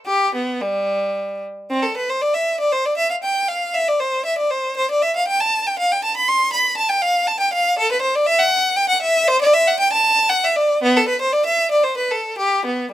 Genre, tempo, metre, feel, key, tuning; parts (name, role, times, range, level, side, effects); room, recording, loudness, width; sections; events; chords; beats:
classical, baroque-style suite movement for unaccompanied violin; 118 BPM; 3/4; rubato; C major; A4 = 444 Hz
clear violin; solo; 0.1-12.9 s; G3 to C6; -16 LUFS; equal
little or no reverb; close, detailed microphones; -16 LUFS; side -13 dB against mid
0.0-1.7 A section; 1.7-12.9 A section
| 0.06 0.61 1.16 | 1.70 2.22 2.73 | 3.24 3.75 4.26 | 4.77 5.28 5.79 | 6.28 6.78 7.28 | 7.78 8.28 8.78 | 9.28 9.79 10.29 | 10.81 11.33 11.84 | 12.37 12.91